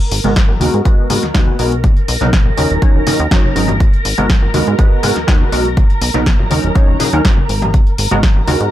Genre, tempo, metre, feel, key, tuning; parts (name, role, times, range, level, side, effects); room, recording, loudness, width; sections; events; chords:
filtered disco house; 122 BPM; 4/4; straight; G# minor; A4 = 436 Hz
phased string machine; sustained chords; 0.0-8.7 s; A#4 to A#5; -23 LUFS; right 1 dB; ensemble chorus, phaser, sidechain pumping, low-pass filter
punchy analog drum machine; drums; 0.0-8.7 s; hi-hat, snare drum; -20 LUFS; left 1 dB; sidechain pumping on hats, sidechain pumping on cymbals
plucky analog bass; bass; 0.1-8.7 s; D#1 to G#2; -18 LUFS; equal; sidechain pumping, low-pass filter
tube shaker and congas; percussion; 0.1-8.7 s; -22 LUFS; left 2 dB; sidechain pumping on perc, low-pass filter on perc
funky polysynth comp; accompaniment; 0.2-8.7 s; F#3 to C#5; -18 LUFS; right 1 dB; chorus, phaser, sidechain pumping, low-pass filter
electronic kick drum; drums; 0.4-8.3 s; -12 LUFS; equal
digital ambience; -11 LUFS; side -13 dB against mid
0.0-8.7 A section
filter sweep 0.0-8.7
0.0 G#m9; 1.8 Bmaj7(no3); 2.6 D#m7; 3.8 G#m9; 5.8 Bmaj7(no3); 6.5 D#m7; 7.7 G#m9